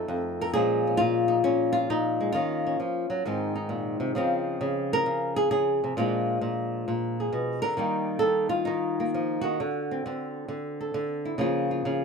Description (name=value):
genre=solo jazz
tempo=133 BPM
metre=4/4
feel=swing 68% on 8ths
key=Bb minor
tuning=A4 = 440 Hz
part: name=flamenco guitar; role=solo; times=0.0-12.0 s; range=F2 to Bb4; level=-24 LUFS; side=equal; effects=none
room=light reverb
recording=close, detailed microphones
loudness=-24 LUFS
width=side -5 dB against mid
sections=0.5-12.0 A section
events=none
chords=0.0 F7; 0.5 Bbm7; 2.3 Ebm9; 3.2 Abadd9; 4.2 Dbmaj9; 6.0 Bb7b9; 7.8 Ebadd9; 9.6 D7; 11.4 Db6